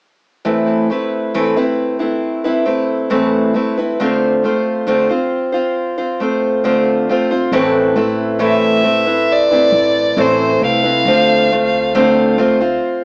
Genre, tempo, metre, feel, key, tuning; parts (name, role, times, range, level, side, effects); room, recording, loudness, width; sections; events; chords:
acoustic folk duo or small band; 68 BPM; 4/4; straight; A minor; A4 = 440 Hz
picked steel-string acoustic guitar; accompaniment; 0.4-13.0 s; A2 to C5; -13 LUFS; equal; cassette tape
upright bass; bass; 7.5-12.8 s; A1 to D2; -27 LUFS; equal
clear fiddle; melody; 8.4-12.4 s; C5 to F5; -14 LUFS; equal
wet studio reverb, RT60 0.6 s; home recording on cassette, small speaker sound; -12 LUFS; side -33 dB against mid
0.5-7.5 A section; 7.5-13.0 B section
0.5 Amadd9; 4.0 Dm7; 7.5 Amadd9; 11.1 Dm7